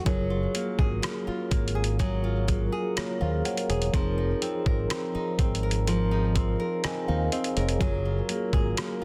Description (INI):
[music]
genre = contemporary R&B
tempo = 62 BPM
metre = 4/4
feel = straight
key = unclear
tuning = A4 = 441 Hz
[part]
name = mellow tine electric piano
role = accompaniment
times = 0.0-9.0 s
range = F3 to Ab5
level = -35 LUFS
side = equal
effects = none
[part]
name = nylon-string guitar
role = arpeggios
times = 0.0-9.0 s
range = F3 to Bb4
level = -35 LUFS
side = equal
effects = none
[part]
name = mellow French horn section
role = sustained chords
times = 0.1-9.0 s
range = F3 to Bb4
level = -37 LUFS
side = equal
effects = none
[part]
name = fingered electric bass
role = bass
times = 0.1-8.7 s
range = Fb1 to Eb2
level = -30 LUFS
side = equal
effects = none
[part]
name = dusty soul sampler-style drum kit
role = drums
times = 0.1-9.0 s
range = hi-hat, kick drum, rim click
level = -31 LUFS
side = equal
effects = soft clipping on snare
[sound]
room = light reverb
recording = dense, heavily limited modern master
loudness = -27 LUFS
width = mono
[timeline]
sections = 0.0-9.0 A section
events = none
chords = 0.1 Gbmaj9; 3.9 Bbm11/F; 7.8 Gbmaj9